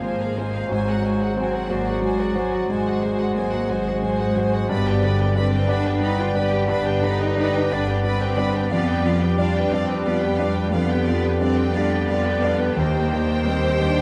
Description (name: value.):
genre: classical, romantic movement for piano and orchestra.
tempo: 60 BPM (dotted quarters).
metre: 12/8.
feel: rubato.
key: unclear.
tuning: A4 = 440 Hz.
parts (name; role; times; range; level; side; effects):
rich symphonic violin section; melody; 0.0-14.0 s; F5 to B5; -36 LUFS; equal; none.
warm concert grand piano; melody; 0.0-14.0 s; Eb2 to D5; -26 LUFS; equal; none.
mellow clarinet; second line; 0.0-14.0 s; B4 to D5; -34 LUFS; equal; none.
rich symphonic violin section; second line; 0.0-14.0 s; Gb4 to D5; -34 LUFS; equal; none.
rich symphonic viola section; accompaniment; 0.0-14.0 s; F4 to B4; -36 LUFS; equal; none.
warm bassoon; accompaniment; 0.0-14.0 s; D3 to B3; -33 LUFS; equal; none.
mellow French horn section; sustained chords; 0.0-14.0 s; F4 to D5; -31 LUFS; equal; none.
dark symphonic double bass section; bass; 0.0-14.0 s; G1 to F2; -28 LUFS; equal; none.
warm symphonic cello section; bass; 0.0-14.0 s; Gb3 to G4; -30 LUFS; equal; none.
room: wet cathedral reverb, RT60 6.0 s.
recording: in a vast, echoing space.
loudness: -21 LUFS.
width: mono.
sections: 0.0-14.0 A section.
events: none.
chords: 0.0 Fm/Ab; 0.7 Ab7; 4.7 G; 8.7 G7/F; 12.8 Cm/Eb.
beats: | 0.69 1.70 2.70 3.69 | 4.70 5.69 6.69 7.71 | 8.71 9.72 10.74 11.76 | 12.78 13.80.